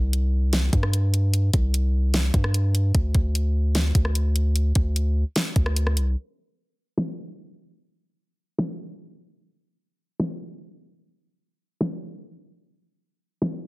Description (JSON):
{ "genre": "hip hop, atmospheric cloud-rap", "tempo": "149 BPM", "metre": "4/4", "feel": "half-time", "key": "unclear", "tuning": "A4 = 440 Hz", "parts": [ { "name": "long sustained 808-style bass", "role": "bass", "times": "0.0-6.2 s", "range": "C2 to G2", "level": "-21 LUFS", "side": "equal", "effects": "none" }, { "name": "smooth R&B drum kit", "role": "drums", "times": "0.1-13.5 s", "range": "hi-hat, kick drum, rim click, snare drum", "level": "-24 LUFS", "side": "equal", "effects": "none" } ], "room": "digital ambience", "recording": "dense, heavily limited modern master, low-pass filter", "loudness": "-21 LUFS", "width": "side -22 dB against mid", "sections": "0.0-6.2 A section; 6.2-13.7 B section", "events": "break 6.2-12.6; hi-hats muted 11.0-12.6", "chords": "none" }